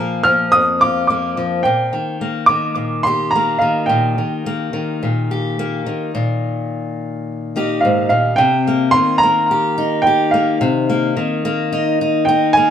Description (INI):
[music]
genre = acoustic folk duo or small band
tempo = 107 BPM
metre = 4/4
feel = straight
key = C minor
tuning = A4 = 439 Hz
[part]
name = warm upright piano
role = melody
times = 0.0-12.7 s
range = F5 to F6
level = -15 LUFS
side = right 2 dB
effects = plate reverb, tape echo
[part]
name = fingerpicked steel-string acoustic guitar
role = accompaniment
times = 0.0-12.7 s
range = F2 to G4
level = -18 LUFS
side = left 2 dB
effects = none
[sound]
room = moderate studio reverb, RT60 0.6 s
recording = none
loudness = -14 LUFS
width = side -9 dB against mid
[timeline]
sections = 0.0-6.1 A section; 6.1-8.4 B section; 8.4-12.7 C section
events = none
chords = 0.0 Bb5; 1.6 Eb/Bb; 8.4 Cm7